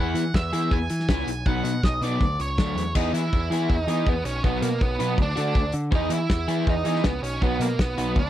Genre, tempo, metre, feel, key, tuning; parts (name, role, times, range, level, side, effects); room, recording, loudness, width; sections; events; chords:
indie rock; 161 BPM; 4/4; straight; A4 = 439 Hz
octave-fuzz lead guitar; melody; 0.0-8.3 s; A#3 to G#5; -28 LUFS; right 3 dB; distortion, slapback echo
crunchy overdriven guitar; riff; 0.0-8.2 s; E3 to G#4; -28 LUFS; left 2 dB
growling picked electric bass; bass; 0.0-8.3 s; B1 to E3; -27 LUFS; equal; overdrive
loose indie drum kit; drums; 0.2-8.2 s; crash cymbal, hi-hat, kick drum, snare drum; -24 LUFS; equal
small room ambience; dry, close 1970s-style studio recording; -21 LUFS; side -12 dB against mid
0.0-2.9 A section; 2.9-8.3 B section
0.0 E; 1.3 B; 2.2 Dmaj7; 2.9 Emaj7; 4.3 B; 5.2 D; 5.9 Emaj7; 7.2 B